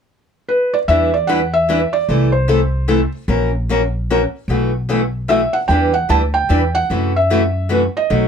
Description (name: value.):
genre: acoustic string swing (jazz manouche).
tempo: 149 BPM.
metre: 3/4.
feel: swing 62% on 8ths.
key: E minor.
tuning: A4 = 440 Hz.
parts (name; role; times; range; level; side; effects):
felt-muted upright piano; melody; 0.5-3.1, 5.3-8.3 s; B4 to A5; -17 LUFS; right 1 dB; none.
picked old ladder-braced acoustic guitar; accompaniment; 0.9-8.3 s; B2 to B4; -18 LUFS; left 2 dB; none.
upright bass; bass; 0.9-8.3 s; A#1 to F#2; -18 LUFS; equal; none.
room: little or no reverb.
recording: none.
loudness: -14 LUFS.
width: side -7 dB against mid.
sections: 0.9-8.3 A section.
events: none.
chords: 0.0 N.C.; 0.9 Em7; 2.1 C6; 3.3 F#7/A#; 4.5 B7sus4; 5.7 Em7; 6.9 F#m7b5.